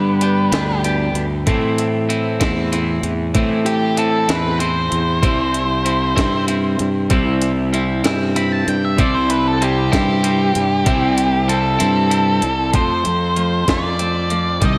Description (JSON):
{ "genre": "indie rock", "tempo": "64 BPM (dotted quarters)", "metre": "6/8", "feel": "straight", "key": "unclear", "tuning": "A4 = 440 Hz", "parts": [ { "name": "octave-fuzz lead guitar", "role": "melody", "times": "0.0-0.8, 3.7-14.8 s", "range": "G4 to B5", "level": "-23 LUFS", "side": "equal", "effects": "distortion, slapback echo" }, { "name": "sludgy distorted guitar", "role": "riff", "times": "0.0-14.8 s", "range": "G2 to G4", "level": "-25 LUFS", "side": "equal", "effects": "overdrive, analog chorus, slapback echo" }, { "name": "fuzz fingered electric bass", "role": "bass", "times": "0.0-14.8 s", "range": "C2 to A2", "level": "-22 LUFS", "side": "equal", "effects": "overdrive" }, { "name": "biting overdriven guitar", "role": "riff", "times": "0.2-14.8 s", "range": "E3 to G4", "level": "-27 LUFS", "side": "equal", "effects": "slapback echo" }, { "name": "breakbeat sampler-style drum kit", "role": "drums", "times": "0.2-14.8 s", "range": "hi-hat, kick drum, snare drum", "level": "-24 LUFS", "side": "equal", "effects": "none" } ], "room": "moderate lush hall reverb, RT60 2.8 s", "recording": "big arena sound", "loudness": "-17 LUFS", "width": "mono", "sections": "0.0-12.7 A section; 12.7-14.8 B section", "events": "lead electric guitar solo 0.0-12.7; kick and snare drop out 11.8-12.7", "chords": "0.0 G; 1.5 Am; 5.2 C6; 12.7 F" }